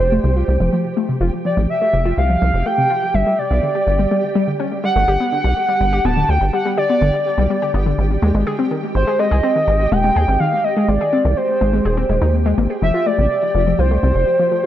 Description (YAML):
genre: IDM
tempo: 124 BPM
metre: 4/4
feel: straight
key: unclear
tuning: A4 = 440 Hz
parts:
  - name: warbly nostalgic lead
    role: melody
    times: 0.0-14.7 s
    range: C5 to A5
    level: -18 LUFS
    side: equal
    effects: chorus, dub echo
  - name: deep acid bass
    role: bass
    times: 0.0-14.3 s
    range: D1 to Eb2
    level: -17 LUFS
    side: equal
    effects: tube saturation
  - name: flickering grainy texture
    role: texture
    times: 0.0-14.7 s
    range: G4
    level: -29 LUFS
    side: right 4 dB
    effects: built-in reverb
  - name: warbly dusty pluck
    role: arpeggios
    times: 0.1-14.7 s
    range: C3 to Ab4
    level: -20 LUFS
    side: left 2 dB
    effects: chorus, analog delay
room: moderate plate reverb, RT60 2.6 s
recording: echo-heavy mix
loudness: -14 LUFS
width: side -12 dB against mid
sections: 0.0-12.8 A section; 12.8-14.7 B section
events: none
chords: 0.0 Fadd9; 3.1 Gmaj7; 8.0 Abmaj7; 12.8 Fadd9